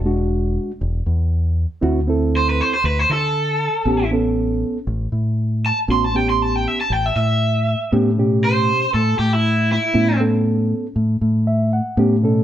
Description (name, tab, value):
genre	straight-eighth soul blues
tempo	118 BPM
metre	4/4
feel	swing 53% on 16ths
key	A mixolydian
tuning	A4 = 440 Hz
part	mellow reed electric piano	accompaniment	0.0-12.4 s	B2 to F#5	-20 LUFS	right 1 dB	none
part	deep dub fingered electric bass	bass	0.0-12.4 s	E1 to D3	-19 LUFS	equal	none
part	overdriven semi-hollow guitar	melody	2.4-10.2 s	E4 to C6	-19 LUFS	right 1 dB	none
room	moderate studio reverb, RT60 1.0 s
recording	band playing live in one room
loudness	-16 LUFS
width	side -11 dB against mid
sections	0.0-7.9 A section; 7.9-12.4 B section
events	overdriven electric guitar solo 7.9-12.4; reed electric piano fill 11.2-12.0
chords	0.0 E7; 1.8 D7(no3); 3.9 A7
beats	0.30 0.81 1.32 | 1.83 2.33 2.84 3.35 | 3.86 4.37 4.87 5.38 | 5.89 6.40 6.91 7.41 | 7.92 8.43 8.94 9.44 | 9.95 10.46 10.96 11.47 | 11.98